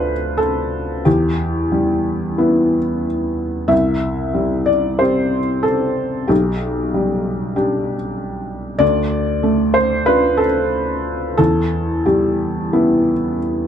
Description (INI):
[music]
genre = neoclassical minimalist piano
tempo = 92 BPM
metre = 4/4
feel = rubato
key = unclear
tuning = A4 = 440 Hz
[part]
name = felt-muted upright piano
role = solo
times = 0.0-13.7 s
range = B1 to E5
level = -15 LUFS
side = equal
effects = none
[sound]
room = light reverb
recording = close, detailed microphones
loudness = -15 LUFS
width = side -9 dB against mid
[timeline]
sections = 0.0-13.7 A section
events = none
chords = 0.0 Dm; 1.1 Em; 3.7 C; 6.3 G/B; 8.8 Dm; 11.4 Em